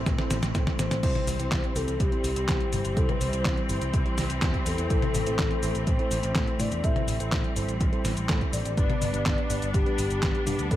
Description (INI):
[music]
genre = italo disco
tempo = 124 BPM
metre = 4/4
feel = straight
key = unclear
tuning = A4 = 440 Hz
[part]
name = bright symphonic string section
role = sustained chords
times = 0.0-10.8 s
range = E3 to D4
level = -33 LUFS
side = left 1 dB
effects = none
[part]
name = picked electric bass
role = bass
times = 0.0-10.8 s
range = G1 to A2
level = -31 LUFS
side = equal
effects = none
[part]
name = detuned 8-bit digital drum machine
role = drums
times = 0.1-10.8 s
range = cabasa, crash cymbal, handclaps, hi-hat, snare drum, toms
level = -30 LUFS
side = left 1 dB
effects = none
[part]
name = electronic kick drum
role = drums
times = 0.1-10.8 s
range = none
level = -28 LUFS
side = equal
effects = none
[part]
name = mellow tine electric piano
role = stabs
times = 0.2-10.8 s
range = B3 to C5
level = -35 LUFS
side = right 4 dB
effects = ping-pong delay
[part]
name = soft octave-layered synth lead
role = melody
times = 0.8-10.8 s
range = G4 to E5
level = -32 LUFS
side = left 3 dB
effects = chorus, tremolo, cassette tape, ping-pong delay
[sound]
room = light reverb, digital ambience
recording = none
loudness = -24 LUFS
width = side -13 dB against mid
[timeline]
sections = 0.0-1.0 A section; 1.0-10.8 B section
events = drum fill 0.0-1.0; filter sweep on tine electric piano 0.0-1.0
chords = 0.0 Am; 1.0 C; 4.9 Am; 8.8 G